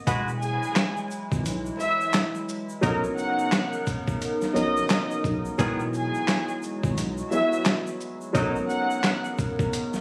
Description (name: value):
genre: hip hop, boom-bap hip-hop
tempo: 87 BPM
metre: 4/4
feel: swing 61% on 16ths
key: E lydian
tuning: A4 = 435 Hz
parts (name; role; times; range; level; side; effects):
- hollow soft pad; sustained chords; 0.0-10.0 s; C#3 to A#4; -36 LUFS; equal; chorus, high-pass filter, low-pass filter
- mellow horn section; stabs; 0.1-8.6 s; D#3 to B4; -33 LUFS; equal; high-pass filter, low-pass filter, analog delay
- round analog bass; bass; 0.1-10.0 s; E1 to B1; -34 LUFS; equal; none
- dusty soul sampler-style drum kit; drums; 0.1-10.0 s; handclaps, hi-hat, kick drum, shaker, snare drum; -28 LUFS; equal; none
- egg shaker; percussion; 0.1-10.0 s; none; -49 LUFS; equal; none
- warm studio violin section; melody; 0.4-9.2 s; G#4 to F#6; -31 LUFS; equal; high-pass filter, low-pass filter, analog delay
- dark concert grand piano; accompaniment; 2.8-10.0 s; E3 to A#4; -31 LUFS; equal; high-pass filter, low-pass filter
room: moderate small room reverb, RT60 0.5 s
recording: recorded on a phone in the room, studio reverb, vinyl crackle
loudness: -26 LUFS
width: mono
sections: 0.0-10.0 A section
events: break 0.0-2.8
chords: 0.1 Eadd9; 2.8 Bmaj9; 5.6 Emaj9; 8.3 Bmaj9